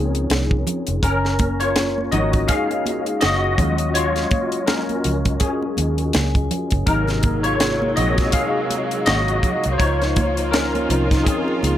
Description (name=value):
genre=lush 1970s-style soul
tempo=82 BPM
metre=4/4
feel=swing 58% on 16ths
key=Db major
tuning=A4 = 441 Hz
part: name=barky tine electric piano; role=accompaniment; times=0.0-11.8 s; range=C3 to F5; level=-20 LUFS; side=left 2 dB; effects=ensemble chorus
part: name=vintage muted fingered electric bass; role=bass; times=0.0-11.8 s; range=F1 to Eb2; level=-23 LUFS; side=equal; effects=none
part: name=tight funk drum kit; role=drums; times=0.1-11.8 s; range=hi-hat, kick drum, snare drum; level=-22 LUFS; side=equal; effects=none
part: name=congas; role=percussion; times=0.3-11.8 s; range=none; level=-30 LUFS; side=right 4 dB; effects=none
part: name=vibraphone with hard mallets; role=texture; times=2.1-10.1 s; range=Eb5 to Ab5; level=-32 LUFS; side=right 1 dB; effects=none
part: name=warm studio string section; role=sustained chords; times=6.9-11.8 s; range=Eb3 to F4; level=-27 LUFS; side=right 2 dB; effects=none
room=little or no reverb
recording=none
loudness=-17 LUFS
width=side -11 dB against mid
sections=0.0-11.8 A section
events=tine electric piano solo 0.0-11.8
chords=0.0 Dbmaj9; 1.0 Gb69; 6.9 Ab9; 9.8 Dbmaj9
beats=0.30 | 1.03 1.76 2.49 3.22 | 3.95 4.68 5.42 6.14 | 6.88 7.61 8.34 9.07 | 9.80 10.53 11.26